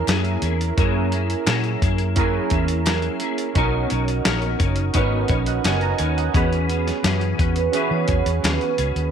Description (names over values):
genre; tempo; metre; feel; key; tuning
indie pop, bedroom pop; 86 BPM; 4/4; straight; unclear; A4 = 440 Hz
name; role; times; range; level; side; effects
clean electric guitar; accompaniment; 0.0-9.1 s; E3 to C#5; -26 LUFS; left 16 dB; ensemble chorus, warbly pitch drift
warbly lo-fi synth keys; accompaniment; 0.0-9.1 s; C#4 to A#5; -24 LUFS; right 12 dB; chorus, cassette tape
vintage muted fingered electric bass; bass; 0.1-9.1 s; F#1 to E3; -23 LUFS; left 1 dB; none
dusty soul sampler-style drum kit; drums; 0.1-9.1 s; hi-hat, kick drum, snare drum; -23 LUFS; left 1 dB; none
group handclap; percussion; 0.1-8.6 s; none; -34 LUFS; left 14 dB; none
vibraphone with soft mallets; second line; 7.6-9.1 s; B4 to E5; -25 LUFS; right 10 dB; wide subtle chorus, slapback echo
room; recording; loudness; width
little or no reverb; 1960s-style stereo with parts hard left and right; -18 LUFS; side -8 dB against mid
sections
0.0-9.1 A section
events
none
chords
0.0 F#9; 3.6 Bmaj9; 6.3 E6